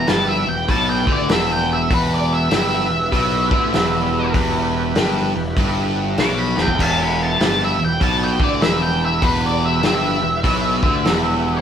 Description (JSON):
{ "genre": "blues rock power trio and southern rock", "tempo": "98 BPM", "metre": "4/4", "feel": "swing 64% on 8ths", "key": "E minor", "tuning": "A4 = 437 Hz", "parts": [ { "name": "octave-fuzz lead guitar", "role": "melody", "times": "0.0-11.6 s", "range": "B4 to D6", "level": "-21 LUFS", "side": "equal", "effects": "distortion" }, { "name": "overdriven tonewheel organ", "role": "sustained chords", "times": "0.0-11.6 s", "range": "B3 to B4", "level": "-28 LUFS", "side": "right 2 dB", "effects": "slow rotary speaker, chorus vibrato" }, { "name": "biting overdriven guitar", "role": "riff", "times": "0.0-11.6 s", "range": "E2 to D3", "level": "-21 LUFS", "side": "equal", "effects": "none" }, { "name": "fuzz picked electric bass", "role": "bass", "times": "0.0-11.6 s", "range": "E1 to D2", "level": "-24 LUFS", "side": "equal", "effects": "overdrive" }, { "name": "vintage drum kit", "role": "drums", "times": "0.1-11.2 s", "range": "crash cymbal, hi-hat, kick drum, snare drum", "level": "-21 LUFS", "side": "equal", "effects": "none" } ], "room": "moderate studio reverb, RT60 0.7 s", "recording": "band playing live in one room", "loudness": "-16 LUFS", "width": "side -8 dB against mid", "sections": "0.0-11.6 A section", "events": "drum fill 6.5-6.8", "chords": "0.0 Em" }